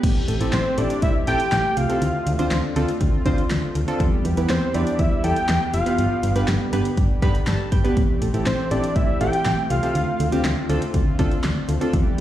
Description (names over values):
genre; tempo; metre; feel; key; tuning
synth-pop; 121 BPM; 4/4; straight; A minor; A4 = 440 Hz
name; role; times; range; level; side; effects
chorused pulse-width pad; sustained chords; 0.0-12.2 s; D3 to G4; -28 LUFS; equal; none
solid FM bass; bass; 0.0-12.2 s; F1 to E2; -23 LUFS; equal; none
deep house drum kit; drums; 0.0-12.2 s; crash cymbal, handclaps, hi-hat, kick drum, snare drum; -24 LUFS; equal; none
warm analog keys; accompaniment; 0.3-12.2 s; B3 to B5; -26 LUFS; right 1 dB; chorus
fat analog lead; melody; 0.5-10.4 s; C5 to G5; -23 LUFS; equal; chorus, slapback echo
room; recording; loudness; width
light reverb; played on a big sound system in a bare room, large studio reverb; -18 LUFS; side -12 dB against mid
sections
0.0-12.2 A section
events
synth keys fill 7.0-8.0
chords
0.0 Am7; 2.0 Dm7; 4.0 Em; 6.0 G; 8.0 Am7; 10.0 Dm7